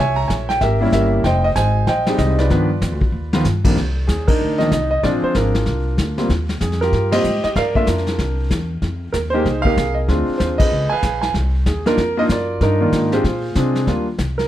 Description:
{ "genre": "jazz piano trio", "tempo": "190 BPM", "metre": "4/4", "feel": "swing 62% on 8ths", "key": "C minor", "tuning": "A4 = 440 Hz", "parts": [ { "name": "warm concert grand piano", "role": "melody", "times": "0.0-14.5 s", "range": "C2 to Bb5", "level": "-18 LUFS", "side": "right 1 dB", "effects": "none" }, { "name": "upright bass", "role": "bass", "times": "0.0-14.5 s", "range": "F1 to C3", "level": "-20 LUFS", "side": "equal", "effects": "none" }, { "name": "vintage brush drum kit", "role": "drums", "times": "0.3-14.5 s", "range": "brushed snare drum, crash cymbal, hi-hat, kick drum, ride cymbal, snare drum", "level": "-22 LUFS", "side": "left 1 dB", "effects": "none" } ], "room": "light reverb", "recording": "none", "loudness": "-16 LUFS", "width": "side -12 dB against mid", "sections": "0.0-3.8 A section; 3.8-13.9 B section", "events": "drum fill 3.1-3.5; band accent 4.2, 7.1, 10.6", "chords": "0.0 C7b9; 1.2 Fm9; 2.5 G7b13; 3.8 Cm9; 5.0 Bb9; 6.3 Eb69; 7.6 Gm7; 8.2 C7; 8.8 Fm11; 10.1 Dm7b5; 10.7 Db7; 11.3 Cm11; 13.2 Bb9; 13.9 Ebmaj7" }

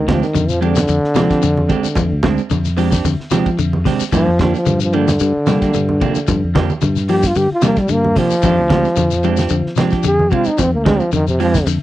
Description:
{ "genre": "afrobeat", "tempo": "111 BPM", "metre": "4/4", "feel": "swing 54% on 16ths", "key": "F dorian", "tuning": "A4 = 435 Hz", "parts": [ { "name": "breathy trombone", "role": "melody", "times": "0.0-11.7 s", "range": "C3 to Ab4", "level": "-17 LUFS", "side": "equal", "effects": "none" }, { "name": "fingered electric bass", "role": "bass", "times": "0.0-11.8 s", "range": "D2 to G3", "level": "-18 LUFS", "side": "equal", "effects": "none" }, { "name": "semi-hollow electric guitar", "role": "arpeggios", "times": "0.1-11.8 s", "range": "C3 to F3", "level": "-22 LUFS", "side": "left 6 dB", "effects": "none" }, { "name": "clean electric guitar", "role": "stabs", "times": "0.1-11.6 s", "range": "F3 to G4", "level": "-20 LUFS", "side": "right 8 dB", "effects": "slapback echo" }, { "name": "cloth-damped thuddy drum kit", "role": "drums", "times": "0.1-11.8 s", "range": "hi-hat, kick drum, ride cymbal, snare drum", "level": "-22 LUFS", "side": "equal", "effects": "none" }, { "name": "congas", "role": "percussion", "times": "0.1-11.3 s", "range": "none", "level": "-22 LUFS", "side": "right 2 dB", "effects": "none" }, { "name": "shekere", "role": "percussion", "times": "0.2-11.8 s", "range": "none", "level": "-27 LUFS", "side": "left 10 dB", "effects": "none" } ], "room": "little or no reverb", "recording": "dry, close 1970s-style studio recording", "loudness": "-13 LUFS", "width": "side -14 dB against mid", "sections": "0.0-11.8 A section", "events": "trombone solo 0.0-11.8", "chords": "0.0 Fm69; 4.1 Gm7; 8.4 Fm69" }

